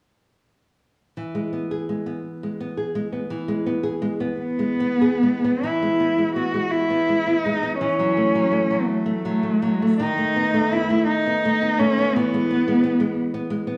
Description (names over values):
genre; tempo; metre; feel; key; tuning
romantic duo for cello and classical guitar; 45-60 BPM (dotted quarters); 6/8; rubato; E major; A4 = 440 Hz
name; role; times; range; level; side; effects
nylon-string guitar; accompaniment; 1.2-13.8 s; D#3 to G#4; -25 LUFS; equal; none
rich cello; melody; 4.4-13.2 s; A3 to F#4; -23 LUFS; equal; none
room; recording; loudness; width
moderate recital hall reverb, RT60 1.4 s; recorded in a church or concert hall, small room ambience; -22 LUFS; mono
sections
1.2-5.6 A section; 5.6-13.8 B section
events
none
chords
1.2 E; 7.8 F#m7/E; 10.0 B7/D#; 12.2 E